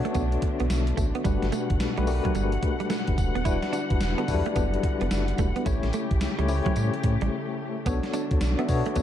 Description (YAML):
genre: R&B, new jack swing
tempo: 109 BPM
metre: 4/4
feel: swing 63% on 16ths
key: B minor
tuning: A4 = 440 Hz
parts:
  - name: tine electric piano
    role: accompaniment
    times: 0.0-9.0 s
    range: F#3 to E5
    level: -29 LUFS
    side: left 6 dB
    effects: medium tremolo
  - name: muted studio string section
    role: sustained chords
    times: 0.0-9.0 s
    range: B2 to F#5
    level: -35 LUFS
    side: equal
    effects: none
  - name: round analog bass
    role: bass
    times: 0.0-9.0 s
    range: D#1 to B2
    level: -27 LUFS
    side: equal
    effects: none
  - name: direct-recorded clean electric guitar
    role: riff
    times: 0.1-9.0 s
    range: F#3 to E4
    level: -32 LUFS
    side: right 8 dB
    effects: wide subtle chorus
  - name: gated 80s digital drum machine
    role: drums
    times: 0.1-9.0 s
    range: hi-hat, kick drum, snare drum, tambourine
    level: -28 LUFS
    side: equal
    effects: gated reverb, gated reverb snare
room: light reverb, digital ambience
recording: dark, warm production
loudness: -23 LUFS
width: side -10 dB against mid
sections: 0.0-9.0 A section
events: break 7.3-7.9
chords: 0.0 Bm9; 1.3 Gmaj9; 3.5 Em9; 5.7 A7; 7.9 Bm9